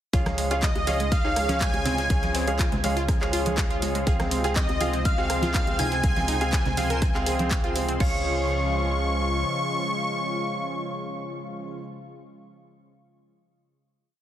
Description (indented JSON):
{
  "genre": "progressive house",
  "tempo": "122 BPM",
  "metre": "4/4",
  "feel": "straight",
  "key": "Db major",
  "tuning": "A4 = 436 Hz",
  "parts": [
    { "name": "lush unison pad", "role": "sustained chords", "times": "0.1-11.8 s", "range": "C3 to F4", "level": "-32 LUFS", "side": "equal", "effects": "chorus, sidechain pumping" },
    { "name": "wide unison pluck", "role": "arpeggios", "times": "0.1-11.8 s", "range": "Ab3 to Bb4", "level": "-32 LUFS", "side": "equal", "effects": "sidechain pumping, ping-pong delay" },
    { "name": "clear concert grand piano", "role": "stabs", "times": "0.1-11.8 s", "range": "C4 to F5", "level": "-31 LUFS", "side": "right 1 dB", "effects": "sidechain pumping, ping-pong delay" },
    { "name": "tight sequencer bass", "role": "bass", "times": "0.1-9.4 s", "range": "Db2", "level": "-30 LUFS", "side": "equal", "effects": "sidechain pumping" },
    { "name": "dusty soul sampler-style drum kit", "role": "drums", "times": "0.1-7.9 s", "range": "hi-hat, snare drum", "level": "-41 LUFS", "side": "equal", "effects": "none" },
    { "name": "electronic kick drum", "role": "drums", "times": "0.1-8.1 s", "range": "none", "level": "-25 LUFS", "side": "equal", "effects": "studio ambience" },
    { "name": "pop drum kit", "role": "drums", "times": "0.1-8.1 s", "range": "crash cymbal, handclaps, hi-hat, rim click", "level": "-32 LUFS", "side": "right 1 dB", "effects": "studio ambience" },
    { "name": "congas and bongos", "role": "percussion", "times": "0.3-7.9 s", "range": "none", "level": "-34 LUFS", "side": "right 1 dB", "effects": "sidechain pumping on perc" },
    { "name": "soft supersaw", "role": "melody", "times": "0.6-11.8 s", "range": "Eb5 to Db6", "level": "-30 LUFS", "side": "left 1 dB", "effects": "ping-pong delay" },
    { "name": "soft synth bell", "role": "second line", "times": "0.6-11.8 s", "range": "Eb6 to Db7", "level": "-35 LUFS", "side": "right 1 dB", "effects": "chorus, phaser, vintage 12-bit sampler grit, sidechain pumping, ping-pong delay" },
    { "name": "backwards swelling texture", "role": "texture", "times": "5.0-8.0 s", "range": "C5 to C6", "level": "-41 LUFS", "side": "equal", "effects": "none" }
  ],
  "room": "light reverb, digital ambience",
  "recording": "heavily compressed radio sound",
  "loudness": "-22 LUFS",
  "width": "side -11 dB against mid",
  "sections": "0.1-8.0 drop; 8.0-11.9 final chord",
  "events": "drop 0.1-8.0",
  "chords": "0.1 Db; 4.1 Fm/Db; 8.0 Db"
}